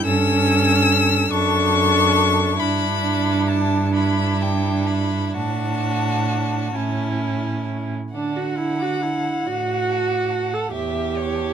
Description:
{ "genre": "classical, slow romantic movement for string quartet", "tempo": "42-49 BPM (dotted quarters)", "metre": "6/8", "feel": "rubato", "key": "D major", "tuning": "A4 = 439 Hz", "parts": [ { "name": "rich violin", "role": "melody", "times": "0.0-11.5 s", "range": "C#5 to E6", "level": "-24 LUFS", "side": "left 7 dB", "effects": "none" }, { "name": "rich violin", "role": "second line", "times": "0.0-11.5 s", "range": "E4 to F#5", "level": "-27 LUFS", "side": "left 2 dB", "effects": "none" }, { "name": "clear viola", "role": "accompaniment", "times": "0.0-11.5 s", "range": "C#4 to A4", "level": "-24 LUFS", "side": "right 3 dB", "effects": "none" }, { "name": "clear cello", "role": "bass", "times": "0.0-11.5 s", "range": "E2 to D3", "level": "-22 LUFS", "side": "right 3 dB", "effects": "none" } ], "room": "little or no reverb", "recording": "close, detailed microphones", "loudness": "-18 LUFS", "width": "side -8 dB against mid", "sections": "0.0-8.1 A section; 8.1-11.5 B section", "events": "none", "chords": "0.1 A7/G; 1.3 D/F#; 2.6 Em7/G; 5.3 D/A; 6.8 A; 8.1 D; 10.7 A7/E" }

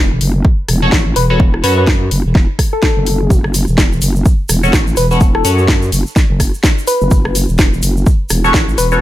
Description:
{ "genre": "bass house", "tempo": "126 BPM", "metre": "4/4", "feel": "swing 59% on 16ths", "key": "F# minor", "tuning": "A4 = 440 Hz", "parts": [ { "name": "vowel-sweep wobble bass", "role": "bass", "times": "0.0-9.0 s", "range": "E1 to F#2", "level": "-14 LUFS", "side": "equal", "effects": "chorus, overdrive, sidechain pumping" }, { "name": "house drum kit", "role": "drums", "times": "0.2-8.9 s", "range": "hi-hat, rim click, snare drum", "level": "-18 LUFS", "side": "left 1 dB", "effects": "overdrive" }, { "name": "electronic kick drum", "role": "drums", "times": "0.4-8.7 s", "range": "none", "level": "-12 LUFS", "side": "equal", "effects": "overdrive" }, { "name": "band-passed chord stab", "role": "stabs", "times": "0.8-9.0 s", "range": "C#4 to C#5", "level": "-18 LUFS", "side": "left 1 dB", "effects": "phaser, wide subtle chorus, sidechain pumping, ping-pong delay" }, { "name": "soft struck synth lead", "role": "melody", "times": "1.2-9.0 s", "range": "A4 to B4", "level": "-18 LUFS", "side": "left 2 dB", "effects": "chorus, phaser, ping-pong delay" }, { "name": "egg shaker", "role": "percussion", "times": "3.3-9.0 s", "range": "none", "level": "-25 LUFS", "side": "right 3 dB", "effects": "none" } ], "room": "digital ambience", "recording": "none", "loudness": "-10 LUFS", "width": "side -14 dB against mid", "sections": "0.0-9.0 A section", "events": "filter sweep on wobble bass 0.0-9.0", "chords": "0.0 F#m" }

